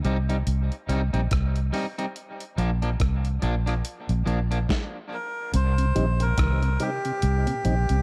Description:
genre	dub reggae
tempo	71 BPM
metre	4/4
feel	swing 58% on 16ths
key	C minor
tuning	A4 = 445 Hz
part	electric guitar at the edge of break-up	accompaniment	0.0-4.6 s	F3 to Eb4	-34 LUFS	equal	dub echo
part	vintage muted fingered electric bass	bass	0.0-8.0 s	Bb1 to C2	-25 LUFS	equal	none
part	dusty soul sampler-style drum kit	drums	0.0-8.0 s	hi-hat, kick drum, rim click, snare drum	-32 LUFS	equal	none
part	melodica	melody	5.1-8.0 s	G4 to C5	-31 LUFS	equal	dub echo
part	electric guitar with an envelope filter	arpeggios	5.5-7.8 s	Bb2 to Eb3	-38 LUFS	equal	none
part	mellow tonewheel organ	accompaniment	5.8-8.0 s	C3 to Eb4	-34 LUFS	equal	overdrive, slow rotary speaker, dub echo
room	light reverb, digital ambience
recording	echo-heavy mix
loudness	-25 LUFS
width	mono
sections	0.0-5.5 A section; 5.5-8.0 B section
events	stop 4.7-5.5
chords	0.0 Cm; 2.2 Bb; 5.5 Cm

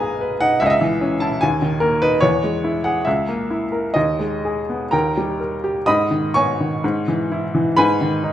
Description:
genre	classical, romantic character piece for solo piano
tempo	59-76 BPM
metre	2/4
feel	rubato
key	G# minor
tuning	A4 = 440 Hz
part	clear upright piano	solo	0.0-8.3 s	B1 to D#6	-17 LUFS	equal	none
room	moderate recital hall reverb, RT60 1.6 s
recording	none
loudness	-17 LUFS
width	side -11 dB against mid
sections	0.0-5.9 A section; 5.9-8.3 B section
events	none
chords	0.0 G#m/B; 0.6 C#m; 1.4 D#5; 2.2 E; 3.1 A#dim/C#; 4.0 G#m/D#; 4.9 D#; 5.9 G#m; 6.8 C#m/G#; 7.8 G#m

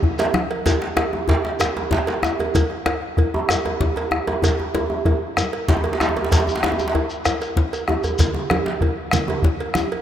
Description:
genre	west african traditional, West African drum ensemble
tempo	128 BPM (dotted quarters)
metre	12/8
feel	straight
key	none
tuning	none
part	bombo	percussion	0.0-9.9 s	none	-23 LUFS	equal	none
part	congas	percussion	0.0-0.5, 8.2-9.9 s	none	-28 LUFS	right 4 dB	none
part	djembe	percussion	0.0-9.9 s	none	-25 LUFS	left 4 dB	none
part	cowbell	percussion	0.2-10.0 s	none	-28 LUFS	right 4 dB	none
part	djembe	percussion	0.2-9.9 s	none	-24 LUFS	right 2 dB	none
part	shekere	percussion	0.2-9.8 s	none	-29 LUFS	left 2 dB	none
room	moderate cathedral reverb, RT60 4.9 s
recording	in a vast, echoing space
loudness	-18 LUFS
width	side -10 dB against mid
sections	0.7-10.0 A section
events	drum fill 0.0-0.7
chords	none

